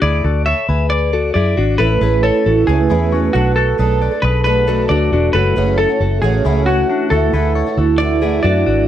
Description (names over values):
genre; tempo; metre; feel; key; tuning
indie pop; 135 BPM; 4/4; straight; unclear; A4 = 441 Hz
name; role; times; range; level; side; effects
semi-hollow electric guitar; melody; 0.0-8.9 s; F#4 to E5; -19 LUFS; equal; lush chorus
direct-recorded clean electric guitar; arpeggios; 0.0-8.9 s; C#4 to D5; -20 LUFS; left 7 dB; phaser, slapback echo
vintage muted fingered electric bass; bass; 0.0-8.9 s; E1 to F#2; -16 LUFS; equal; none
fingerpicked twelve-string acoustic guitar; accompaniment; 1.8-8.9 s; F#2 to B4; -18 LUFS; right 8 dB; none
room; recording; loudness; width
little or no reverb; dry, close 1970s-style studio recording; -12 LUFS; side -11 dB against mid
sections
0.0-8.9 A section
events
none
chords
0.0 Dadd9; 1.8 Aadd9; 3.3 Bm7; 5.3 F#m7; 7.1 Dadd9